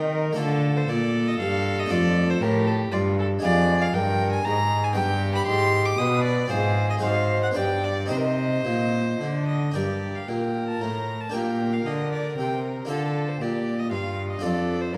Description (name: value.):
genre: classical, baroque-style sonata movement with continuo.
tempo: 117 BPM.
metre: 3/4.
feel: rubato.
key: C minor from 3.4 s, G minor from 9.8 s.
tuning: A4 = 439 Hz.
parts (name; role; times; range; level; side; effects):
warm violin; second line; 0.0-15.0 s; F4 to Eb5; -32 LUFS; equal; none.
harpsichord; accompaniment; 0.0-15.0 s; F2 to Bb4; -31 LUFS; equal; none.
rich cello; bass; 0.0-15.0 s; F2 to Eb3; -28 LUFS; equal; none.
rich violin; melody; 0.1-15.0 s; A4 to Eb6; -31 LUFS; equal; none.
room: wet recital hall reverb, RT60 1.6 s.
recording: none.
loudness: -24 LUFS.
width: mono.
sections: 0.0-9.8 A section; 9.8-15.0 A section.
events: none.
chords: 0.4 Dm; 1.9 Dm/F; 3.4 Ddim/F; 5.0 G; 6.5 Fm/Ab; 7.0 Ab7; 7.6 G; 8.1 Cm; 9.8 Gm; 11.3 Gm/Bb; 12.9 Dm; 14.4 Dm/F.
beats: | 0.38 0.89 1.41 | 1.92 2.42 2.93 | 3.44 3.95 4.46 | 4.96 5.47 5.99 | 6.50 7.02 7.56 | 8.10 8.66 9.21 | 9.75 10.28 10.81 | 11.33 11.86 12.37 | 12.89 13.40 13.91 | 14.42 14.93.